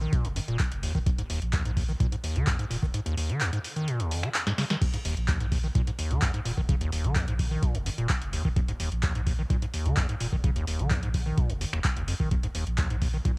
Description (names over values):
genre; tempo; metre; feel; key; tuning
acid house; 128 BPM; 4/4; straight; Eb minor; A4 = 440 Hz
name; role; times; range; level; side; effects
acid bass, square; riff; 0.0-13.3 s; Eb2 to Eb3; -30 LUFS; equal; sidechain pumping, tape echo
warm sub bass; bass; 0.0-13.2 s; Eb1 to Db2; -32 LUFS; equal; sidechain pumping
booming analog drum machine; drums; 0.1-13.3 s; crash cymbal, finger snaps, handclaps, hi-hat, snare drum; -33 LUFS; equal; none
electronic kick drum; drums; 0.1-13.3 s; none; -27 LUFS; equal; none
room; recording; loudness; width
little or no reverb; home recording on cassette; -25 LUFS; side -32 dB against mid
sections
0.0-13.4 A section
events
drum fill 4.5-4.8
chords
0.0 Eb5